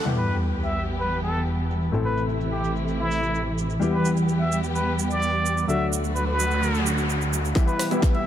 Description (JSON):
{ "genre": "EDM, festival progressive house", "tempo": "128 BPM", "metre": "4/4", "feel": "straight", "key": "E minor", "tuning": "A4 = 440 Hz", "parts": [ { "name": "warm concert grand piano", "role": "accompaniment", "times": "0.0-8.2 s", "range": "A2 to A4", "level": "-30 LUFS", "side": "left 5 dB", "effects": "sidechain pumping" }, { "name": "dark symphonic string section", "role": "sustained chords", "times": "0.0-8.3 s", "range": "B2 to G4", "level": "-28 LUFS", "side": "right 2 dB", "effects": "sidechain pumping" }, { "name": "wide unison pluck", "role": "arpeggios", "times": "0.0, 7.6-8.2 s", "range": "E6", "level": "-44 LUFS", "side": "left 2 dB", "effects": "none" }, { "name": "supersaw chords", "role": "riff", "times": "0.0, 7.6-8.2 s", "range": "B3 to E5", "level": "-34 LUFS", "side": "right 2 dB", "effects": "none" }, { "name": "fat analog bass", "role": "bass", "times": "0.1-7.5 s", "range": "A1 to E2", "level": "-27 LUFS", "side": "equal", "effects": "sidechain pumping" }, { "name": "house drum kit", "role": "drums", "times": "0.1-8.2 s", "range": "handclaps, hi-hat, rim click, shaker", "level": "-34 LUFS", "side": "right 5 dB", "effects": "low-pass filter on snare, low-pass filter on hats, low-pass filter on perc, low-pass filter on cymbals, low-pass filter on room" }, { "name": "sub drop, noise sweep and riser", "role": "sound effects", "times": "0.1-1.9, 6.1-8.3 s", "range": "none", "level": "-30 LUFS", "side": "equal", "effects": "none" }, { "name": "trumpet with plunger mute", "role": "melody", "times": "0.2-8.3 s", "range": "E4 to E5", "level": "-28 LUFS", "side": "equal", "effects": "dub echo" }, { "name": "electronic kick drum", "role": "drums", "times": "7.6-8.1 s", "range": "none", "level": "-20 LUFS", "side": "equal", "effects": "none" } ], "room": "light reverb, digital ambience", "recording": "none", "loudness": "-21 LUFS", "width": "side -10 dB against mid", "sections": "0.1-7.6 A section", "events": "impact 0.1-1.9; filter sweep on drum 0.1-7.6; noise sweep 6.1-7.6; drum fill 7.6-8.3; riser 7.6-8.3", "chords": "0.1 Em; 1.9 Am; 3.8 Em; 5.7 D; 7.6 Em" }